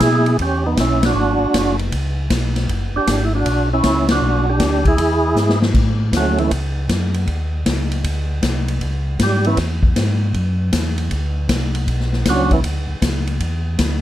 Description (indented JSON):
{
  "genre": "soul jazz organ trio",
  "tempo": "157 BPM",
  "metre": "4/4",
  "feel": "swing 66% on 8ths",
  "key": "A major",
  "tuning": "A4 = 435 Hz",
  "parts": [
    { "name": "percussive tonewheel organ", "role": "melody", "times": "0.0-6.5, 9.2-9.6, 12.3-12.6 s", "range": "E3 to G#4", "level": "-17 LUFS", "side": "right 2 dB", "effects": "slow rotary speaker, overdrive, chorus vibrato" },
    { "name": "mellow tonewheel organ", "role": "bass", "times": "0.0-14.0 s", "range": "F#1 to B2", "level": "-19 LUFS", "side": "equal", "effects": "chorus vibrato, slow rotary speaker" },
    { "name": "swinging big-band drum kit", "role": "drums", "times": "0.0-13.9 s", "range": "crash cymbal, hi-hat, kick drum, ride cymbal, snare drum", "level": "-20 LUFS", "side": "left 1 dB", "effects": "none" }
  ],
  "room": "light reverb",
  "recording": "dark, warm production",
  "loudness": "-15 LUFS",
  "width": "side -13 dB against mid",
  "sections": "0.0-5.7 A section; 5.7-14.0 B section",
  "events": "band accent 1.0, 4.0; drum fill 5.4-5.7; tonewheel organ solo 5.7-14.0",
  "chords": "0.0 C#m7; 1.2 D; 1.9 Bsus2; 2.7 F#9sus4; 4.2 Bm; 5.0 E; 5.7 A6; 7.3 C#sus2; 8.0 Csus2; 8.8 C#m; 10.3 Cadd9; 11.9 Bmadd9; 13.4 E5"
}